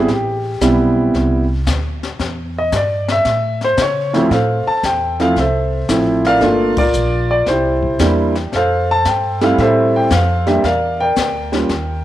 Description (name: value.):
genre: jazz piano trio.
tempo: 114 BPM.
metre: 4/4.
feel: swing 68% on 8ths.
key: A minor, D minor from 4.3 s.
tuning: A4 = 444 Hz.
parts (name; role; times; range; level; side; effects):
warm concert grand piano; melody; 0.0-12.0 s; D2 to A5; -14 LUFS; equal; none.
upright bass; bass; 0.0-12.0 s; G1 to C#3; -20 LUFS; equal; none.
jazz brush drum kit; drums; 0.1-12.0 s; brushed snare drum, crash cymbal, hi-hat, kick drum, snare drum; -24 LUFS; left 4 dB; none.
room: light reverb, small room ambience.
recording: 1960s-style stereo.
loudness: -13 LUFS.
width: side -13 dB against mid.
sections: 0.0-4.3 A section; 4.3-12.0 B section.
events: grand piano solo 0.0-4.3; band accent 6.7.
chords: 0.1 Am9; 2.2 Em; 3.3 A; 4.3 Dm9 (rootless); 6.4 Gm7; 7.5 C7; 8.5 Fmaj7; 10.6 Em7b5.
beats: | 0.09 0.61 1.14 1.67 | 2.20 2.73 3.25 3.78 | 4.31 4.83 5.36 5.89 | 6.42 6.95 7.47 8.00 | 8.53 9.06 9.58 10.11 | 10.64 11.17 11.70.